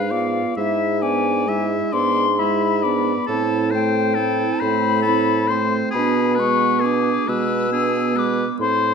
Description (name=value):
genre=classical, slow romantic movement for wind quintet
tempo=45 BPM (dotted quarters)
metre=6/8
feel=rubato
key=unclear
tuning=A4 = 436 Hz
part: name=silver concert flute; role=melody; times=0.0-8.9 s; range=E5 to E6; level=-22 LUFS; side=left 8 dB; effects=none
part: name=bright oboe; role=second line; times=0.0-8.9 s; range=G#4 to E5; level=-26 LUFS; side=left 3 dB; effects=none
part: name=dark French horn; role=accompaniment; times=0.0-8.9 s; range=G#3 to C4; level=-26 LUFS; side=equal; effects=none
part: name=warm clarinet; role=accompaniment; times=0.0-8.9 s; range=B3 to E#4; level=-25 LUFS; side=right 10 dB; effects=none
part: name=dark bassoon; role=bass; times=0.0-8.9 s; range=G#2 to B2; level=-23 LUFS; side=right 3 dB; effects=none
room=moderate scoring stage reverb, RT60 1.5 s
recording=dark, warm production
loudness=-17 LUFS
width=side -6 dB against mid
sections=0.0-8.9 A section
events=none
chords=0.0 G#dim7; 0.6 E7/G#; 3.3 Am; 5.9 G#dim/B